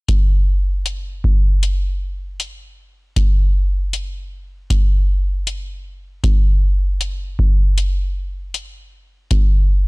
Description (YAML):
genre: dream pop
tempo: 78 BPM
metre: 4/4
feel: straight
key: none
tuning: none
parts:
  - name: booming analog drum machine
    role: drums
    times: 0.1-9.5 s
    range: hi-hat, kick drum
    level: -16 LUFS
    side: equal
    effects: none
room: little or no reverb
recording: blown-out, overdriven recording, overdrive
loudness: -16 LUFS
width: side -29 dB against mid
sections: 0.1-9.9 A section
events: none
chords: none